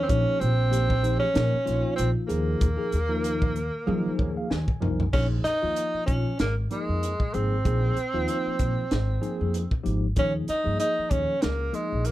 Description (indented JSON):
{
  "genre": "electric jazz fusion",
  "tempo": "95 BPM",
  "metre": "4/4",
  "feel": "swing 55% on 16ths",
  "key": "Bb dorian",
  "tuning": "A4 = 441 Hz",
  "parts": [
    { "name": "clear tenor saxophone", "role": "melody", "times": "0.0-12.1 s", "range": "Ab3 to Eb4", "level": "-28 LUFS", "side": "right 1 dB", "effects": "none" },
    { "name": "upright bass", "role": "bass", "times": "0.0-12.1 s", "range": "Ab1 to Eb3", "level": "-27 LUFS", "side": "equal", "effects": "none" },
    { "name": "tine electric piano", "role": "accompaniment", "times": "0.1-12.1 s", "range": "F3 to Ab5", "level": "-30 LUFS", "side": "left 1 dB", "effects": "fast stereo tremolo, phaser" },
    { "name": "crisp fusion drum kit", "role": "drums", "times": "0.1-12.1 s", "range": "crash cymbal, hi-hat, kick drum, snare drum, toms", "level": "-28 LUFS", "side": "equal", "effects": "none" }
  ],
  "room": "little or no reverb",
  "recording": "none",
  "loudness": "-23 LUFS",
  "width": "side -15 dB against mid",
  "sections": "0.0-5.1 A section; 5.1-12.1 B section",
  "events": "drum fill 3.9-5.1; tine electric piano fill 3.9-5.1",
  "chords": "0.1 Bbm69; 2.3 Ebsus24; 5.1 Bbsus2; 10.2 Eb9sus4"
}